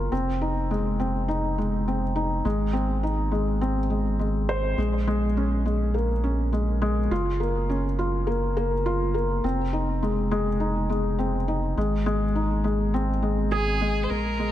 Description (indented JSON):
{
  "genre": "piano and strings electronica",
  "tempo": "103 BPM",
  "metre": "4/4",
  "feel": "straight",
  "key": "unclear",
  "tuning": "A4 = 440 Hz",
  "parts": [
    { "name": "felt-muted upright piano", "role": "riff", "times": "0.0-14.5 s", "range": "Ab3 to C5", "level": "-25 LUFS", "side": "left 1 dB", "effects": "digital delay" },
    { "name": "round analog bass", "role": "bass", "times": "0.0-14.5 s", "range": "F1 to Bb1", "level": "-26 LUFS", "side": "equal", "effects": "none" },
    { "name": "rich violin", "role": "melody", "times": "13.5-14.5 s", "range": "Ab4 to C5", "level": "-28 LUFS", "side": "right 2 dB", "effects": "none" }
  ],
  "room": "light reverb, small room ambience",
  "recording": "none",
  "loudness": "-23 LUFS",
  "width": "side -12 dB against mid",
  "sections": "0.0-14.1 A section",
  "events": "none",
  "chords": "0.1 Fm7; 2.4 Ab; 4.8 Bbm7; 7.1 Gbmaj7; 9.4 Fm7; 11.8 Ab"
}